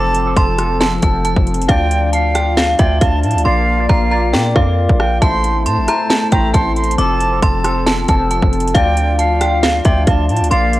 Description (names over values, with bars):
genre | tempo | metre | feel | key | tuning
hip hop, trap | 136 BPM | 4/4 | half-time | unclear | A4 = 440 Hz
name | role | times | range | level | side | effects
metallic FM bell | melody | 0.0-10.8 s | E5 to D6 | -19 LUFS | right 1 dB | chorus
silver concert flute | second line | 0.0-10.8 s | F5 to C6 | -21 LUFS | right 2 dB | tape echo
overdriven tine electric piano | accompaniment | 0.0-10.8 s | F3 to F5 | -21 LUFS | left 2 dB | phaser
airy breathy pad | sustained chords | 0.0-10.8 s | F3 to A4 | -27 LUFS | left 1 dB | chorus
hard-hitting 808-style bass | bass | 0.0-10.8 s | F1 to Bb2 | -17 LUFS | equal | none
trap drum kit | drums | 0.1-10.8 s | hi-hat, kick drum, rim click, snare drum | -16 LUFS | equal | overdrive
room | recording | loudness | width
little or no reverb | dry, gritty hardware recording, cassette tape | -12 LUFS | side -16 dB against mid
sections
0.0-10.8 A section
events
hi-hats muted 3.5-5.2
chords
0.0 F; 1.7 Dm; 3.5 Bb; 5.2 Am; 7.0 F; 8.7 Dm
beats
0.37 0.81 1.25 | 1.69 2.13 2.57 3.01 | 3.45 3.90 4.34 4.78 | 5.22 5.66 6.10 6.54 | 6.98 7.42 7.87 8.31 | 8.75 9.19 9.63 10.07 | 10.51